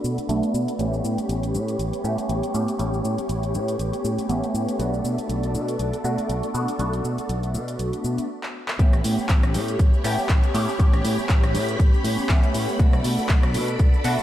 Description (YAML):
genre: filtered disco house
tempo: 120 BPM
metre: 4/4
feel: swing 56% on 16ths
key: unclear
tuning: A4 = 440 Hz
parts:
  - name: funky polysynth comp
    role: accompaniment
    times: 0.0-14.2 s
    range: A3 to G4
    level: -27 LUFS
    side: right 1 dB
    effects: chorus, phaser, cassette tape, sidechain pumping, low-pass filter
  - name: string machine, full ensemble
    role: sustained chords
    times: 0.0-14.2 s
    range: G4 to B5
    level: -30 LUFS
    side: equal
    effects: ensemble chorus, sidechain pumping, low-pass filter
  - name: fingered electric bass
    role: bass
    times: 0.0-14.2 s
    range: A1 to B2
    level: -26 LUFS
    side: equal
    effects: tube saturation, sidechain pumping, low-pass filter
  - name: house drum kit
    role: drums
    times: 0.0-14.2 s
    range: handclaps, hi-hat, rim click, shaker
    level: -32 LUFS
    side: equal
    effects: overdrive, sidechain pumping on perc, sidechain pumping on hats
  - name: electronic kick drum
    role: drums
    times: 8.8-13.9 s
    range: none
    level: -18 LUFS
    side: equal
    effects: overdrive
room: moderate church reverb, RT60 3.0 s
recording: dreamy mix soaked in reverb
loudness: -20 LUFS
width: side -12 dB against mid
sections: 0.0-8.8 A section; 8.8-14.2 B section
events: filter sweep 0.0-8.8; stop 8.3-8.8; drum fill 8.4-8.8; drop 8.8-14.2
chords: 0.0 Bm7; 0.8 A9; 4.8 Bm7; 8.8 A9; 12.8 Bm7